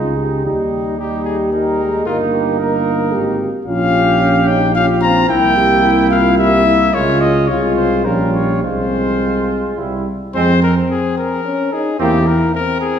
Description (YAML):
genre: classical, brass quintet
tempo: 110 BPM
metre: 3/4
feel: rubato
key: F minor from 3.7 s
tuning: A4 = 440 Hz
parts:
  - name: warm trumpet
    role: melody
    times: 0.0-13.0 s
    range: F4 to Bb5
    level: -18 LUFS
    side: left 3 dB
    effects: none
  - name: mellow trumpet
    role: second line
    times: 0.0-12.2 s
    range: C4 to G4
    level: -23 LUFS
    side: right 5 dB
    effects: none
  - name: clear euphonium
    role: accompaniment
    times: 0.0-12.2 s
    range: G3 to Db4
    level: -21 LUFS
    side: right 2 dB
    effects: none
  - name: mellow French horn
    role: accompaniment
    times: 0.0-13.0 s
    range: C4 to Bb4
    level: -19 LUFS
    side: left 2 dB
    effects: none
  - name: dark tuba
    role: bass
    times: 0.0-12.4 s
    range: G1 to F2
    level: -18 LUFS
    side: right 2 dB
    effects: none
room: wet recital hall reverb, RT60 1.7 s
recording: heard from further back in the room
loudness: -13 LUFS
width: side -8 dB against mid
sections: 0.0-10.3 A section; 10.3-13.0 B section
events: none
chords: 0.5 Eb; 2.1 Eb/G; 3.7 Gm7b5/Bb; 5.3 C7; 6.9 Db; 8.1 Gm7b5/Bb; 8.6 Fm/C; 9.8 C; 10.3 Fm; 12.0 C7/E